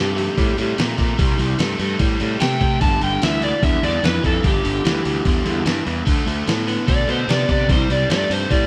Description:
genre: blues rock power trio and southern rock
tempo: 148 BPM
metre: 4/4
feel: straight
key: G major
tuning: A4 = 438 Hz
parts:
  - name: overdriven slide guitar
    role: melody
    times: 0.0-8.7 s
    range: G4 to A5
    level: -25 LUFS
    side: equal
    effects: none
  - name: overdriven electric guitar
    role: riff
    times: 0.0-8.7 s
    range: G2 to B3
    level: -26 LUFS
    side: equal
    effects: none
  - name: fuzz picked electric bass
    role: bass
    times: 0.0-8.7 s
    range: G1 to C3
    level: -24 LUFS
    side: equal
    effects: overdrive
  - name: dusty soul sampler-style drum kit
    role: drums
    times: 0.2-8.6 s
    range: hi-hat, kick drum, snare drum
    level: -23 LUFS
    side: equal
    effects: none
room: moderate stone room reverb, RT60 1.3 s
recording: band playing live in one room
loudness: -19 LUFS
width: mono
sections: 0.0-8.7 A section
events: break 5.9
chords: 0.0 C5; 2.8 G5; 6.1 D5; 7.7 C5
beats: 0.38 0.79 | 1.19 1.60 2.00 2.41 | 2.82 3.22 3.63 4.04 | 4.44 4.85 5.25 5.66 | 6.07 6.47 6.88 7.29 | 7.69 8.10 8.50

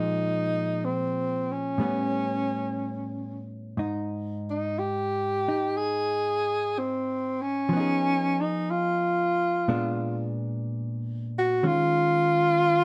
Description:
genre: jazz ballad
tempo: 61 BPM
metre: 4/4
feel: swing 69% on 8ths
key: unclear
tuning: A4 = 440 Hz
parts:
  - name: breathy tenor saxophone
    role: melody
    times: 0.0-12.8 s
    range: C4 to Ab4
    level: -27 LUFS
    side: equal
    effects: none
  - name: hollow-body jazz guitar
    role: accompaniment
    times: 0.0-12.8 s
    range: Ab2 to Ab4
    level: -32 LUFS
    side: equal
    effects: none
room: moderate studio reverb, RT60 0.6 s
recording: band playing live in one room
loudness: -27 LUFS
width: mono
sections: 0.0-12.8 A section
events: none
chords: 0.0 Bb5; 1.8 A9; 3.8 Ab5; 7.7 Fm7b5; 9.7 Bb7b9; 11.6 Eb9sus4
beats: 0.78 1.77 2.77 | 3.77 4.76 5.75 6.74 | 7.71 8.69 9.68 10.66 | 11.64 12.61

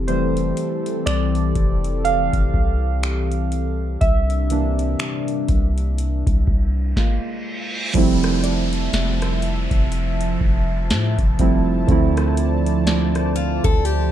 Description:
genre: contemporary R&B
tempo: 61 BPM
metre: 4/4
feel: swing 58% on 16ths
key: F major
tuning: A4 = 437 Hz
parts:
  - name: warm analog pad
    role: sustained chords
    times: 0.0-14.1 s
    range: C3 to A5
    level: -26 LUFS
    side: left 1 dB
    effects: chorus, sidechain pumping
  - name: long sustained 808-style bass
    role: bass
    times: 0.0-14.1 s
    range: F1 to A2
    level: -21 LUFS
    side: equal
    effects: none
  - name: soft electric-piano-like synth keys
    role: accompaniment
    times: 0.1-14.1 s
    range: D3 to F5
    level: -23 LUFS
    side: right 4 dB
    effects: chorus
  - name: booming analog drum machine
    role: drums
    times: 0.1-14.1 s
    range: crash cymbal, finger snaps, hi-hat, kick drum, rim click, snare drum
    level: -21 LUFS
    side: equal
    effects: vintage 12-bit sampler grit
  - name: reverse cymbal and downlifter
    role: sound effects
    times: 7.1-14.1 s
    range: none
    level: -32 LUFS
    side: right 1 dB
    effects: none
  - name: glassy synth bell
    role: texture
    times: 8.4-14.1 s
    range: D5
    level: -36 LUFS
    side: equal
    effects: none
  - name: picked steel-string acoustic guitar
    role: arpeggios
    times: 13.4-14.1 s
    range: F4 to A4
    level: -24 LUFS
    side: left 4 dB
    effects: none
room: light reverb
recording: dark, warm production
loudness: -17 LUFS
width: side -11 dB against mid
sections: 0.0-7.9 A section; 7.9-14.1 B section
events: synth keys solo 0.0-7.9; stop 7.0-7.9; reverse cymbal 7.1-7.9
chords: 0.0 Fmaj7; 4.0 C7; 7.0 Fmadd11/Ab; 7.9 Fmaj7; 11.9 Dm7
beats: | 0.08 1.06 2.05 3.03 | 4.01 5.00 5.98 6.96 | 7.95 8.93 9.91 10.90 | 11.88 12.87 13.85

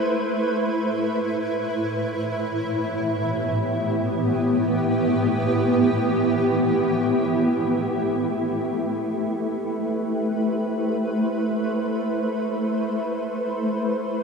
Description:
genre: ambient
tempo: free time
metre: none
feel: none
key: A minor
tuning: A4 = 440 Hz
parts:
  - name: shimmering ambient pad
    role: solo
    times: 0.0-14.2 s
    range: A2 to C5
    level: -21 LUFS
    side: equal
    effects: chorus, built-in reverb
room: wet huge ambient reverb, RT60 8.1 s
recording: dark, warm production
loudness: -21 LUFS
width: side -5 dB against mid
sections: 0.0-7.1 A section; 7.1-14.2 B section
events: none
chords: 0.0 Am; 0.6 Em/A; 7.1 Am7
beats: free time

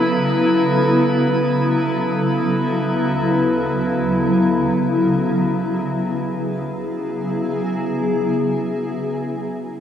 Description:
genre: ambient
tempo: free time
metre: none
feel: none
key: unclear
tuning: A4 = 440 Hz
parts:
  - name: granular cloud pad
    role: sustained chords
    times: 0.0-9.1 s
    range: D2 to A4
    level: -17 LUFS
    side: left 1 dB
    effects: built-in reverb
  - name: drifting glass-harmonics texture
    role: texture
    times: 0.0-5.7 s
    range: B4 to B5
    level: -26 LUFS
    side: right 1 dB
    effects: chorus, built-in reverb
room: wet plate reverb, RT60 3.5 s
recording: dreamy mix soaked in reverb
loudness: -17 LUFS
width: side -9 dB against mid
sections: 0.0-5.7 A section; 5.7-8.7 B section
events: none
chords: 0.0 Aadd9; 2.6 Dmaj7; 4.1 E69/C#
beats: free time

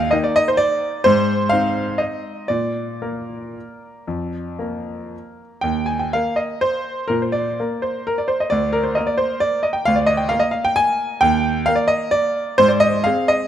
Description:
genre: classical, piano waltz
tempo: 109-140 BPM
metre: 3/4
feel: rubato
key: Eb major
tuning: A4 = 440 Hz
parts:
  - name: clear concert grand piano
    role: solo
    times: 0.0-13.5 s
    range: D2 to Ab5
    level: -17 LUFS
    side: equal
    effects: none
room: light reverb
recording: close, detailed microphones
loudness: -17 LUFS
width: side -10 dB against mid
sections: 0.0-13.5 A section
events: none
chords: 0.0 Eb5; 1.0 Ab; 2.5 Bb; 5.7 Eb5; 8.5 Bb7/D; 11.2 Eb; 12.6 Ab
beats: 0.14 0.60 | 1.05 1.50 1.99 | 2.49 3.01 3.56 | 4.08 4.59 5.13 | 5.65 6.13 6.62 | 7.10 7.58 8.07 | 8.53 8.97 9.42 | 9.87 10.31 10.77 | 11.21 11.65 12.12 | 12.58 13.05

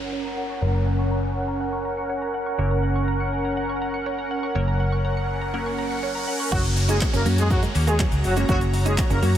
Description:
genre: dance-pop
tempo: 122 BPM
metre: 4/4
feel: straight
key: unclear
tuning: A4 = 441 Hz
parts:
  - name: glassy wavetable pluck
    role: accompaniment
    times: 0.0-9.4 s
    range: F#3 to A#4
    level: -32 LUFS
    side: left 1 dB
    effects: chorus, sidechain pumping, low-pass filter
  - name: supersaw pad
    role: sustained chords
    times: 0.0-9.4 s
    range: C#4 to A#5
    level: -27 LUFS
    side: right 1 dB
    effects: analog chorus, sidechain pumping, low-pass filter
  - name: mallet-like synth pluck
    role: arpeggios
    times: 0.0-6.5 s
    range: C#5 to C#7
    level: -34 LUFS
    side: right 2 dB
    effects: chorus, sidechain pumping, low-pass filter, analog delay
  - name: vintage muted fingered electric bass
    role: bass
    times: 0.0-9.4 s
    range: F#1 to F#2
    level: -23 LUFS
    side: equal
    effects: sidechain pumping
  - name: downlifter and riser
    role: sound effects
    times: 0.0-9.4 s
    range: none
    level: -35 LUFS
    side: equal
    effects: none
  - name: mellow horn section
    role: melody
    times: 6.5-9.4 s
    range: F#3 to A#4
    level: -27 LUFS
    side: equal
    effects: sidechain pumping, analog delay
  - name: direct-recorded clean electric guitar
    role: riff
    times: 6.5-9.3 s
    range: F#3 to F#4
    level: -32 LUFS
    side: right 7 dB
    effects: wide subtle chorus
  - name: punchy analog drum machine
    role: drums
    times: 6.5-9.4 s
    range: crash cymbal, handclaps, hi-hat, kick drum, shaker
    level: -25 LUFS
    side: equal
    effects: none
  - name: group handclap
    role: percussion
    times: 7.0-9.1 s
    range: none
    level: barely audible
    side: none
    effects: none
room: moderate huge ambient reverb, RT60 6.1 s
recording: dreamy mix soaked in reverb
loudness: -21 LUFS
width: side -11 dB against mid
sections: 0.0-6.5 A section; 6.5-9.4 B section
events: filter sweep 0.0-6.5; riser 5.1-6.5; drop 6.5-9.4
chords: 0.0 F#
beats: 0.13 | 0.62 1.11 1.60 2.10 | 2.59 3.08 3.57 4.06 | 4.55 5.05 5.54 6.03 | 6.52 7.01 7.50 8.00 | 8.49 8.98

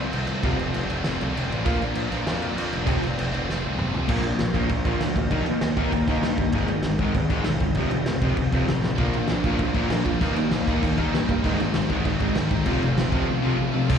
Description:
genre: punk rock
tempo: 196 BPM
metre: 4/4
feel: straight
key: Bb major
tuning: A4 = 440 Hz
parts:
  - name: high-gain distorted guitar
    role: riff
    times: 0.0-4.1, 9.0-14.0 s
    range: F2 to F4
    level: -29 LUFS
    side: equal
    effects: distortion, slapback echo
  - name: fuzz picked electric bass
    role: bass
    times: 0.0-14.0 s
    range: E1 to G2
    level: -28 LUFS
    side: right 1 dB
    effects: overdrive
  - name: loose indie drum kit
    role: drums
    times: 0.1-14.0 s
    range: crash cymbal, kick drum, snare drum, toms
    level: -27 LUFS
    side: right 1 dB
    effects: none
  - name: raw garage guitar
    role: riff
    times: 0.4-14.0 s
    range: F2 to Eb4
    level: -28 LUFS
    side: right 14 dB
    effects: overdrive, slapback echo
  - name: sludgy distorted guitar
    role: riff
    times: 0.4-14.0 s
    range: F2 to Eb4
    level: -26 LUFS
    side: left 8 dB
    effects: overdrive, slapback echo
room: small room ambience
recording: live gig heard through the venue's PA, recital hall reverb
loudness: -21 LUFS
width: side -7 dB against mid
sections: 0.0-4.1 A section; 4.1-13.9 B section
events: half time 0.0-4.1; drum fill 3.5-4.1, 8.8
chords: 0.0 F; 1.7 Bb; 2.9 F; 4.1 Bb; 5.3 Eb; 6.5 Ab5; 7.8 F; 9.0 Bb; 10.2 Eb; 11.4 Ab; 12.7 F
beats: 0.13 | 0.43 0.74 1.04 1.35 | 1.65 1.96 2.26 2.57 | 2.87 3.17 3.48 3.79 | 4.09 4.39 4.70 5.00 | 5.31 5.62 5.92 6.23 | 6.53 6.84 7.14 7.45 | 7.76 8.06 8.37 8.68 | 8.98 9.29 9.60 9.90 | 10.21 10.52 10.82 11.13 | 11.44 11.75 12.05 12.36 | 12.67 12.97 13.28 13.59 | 13.89

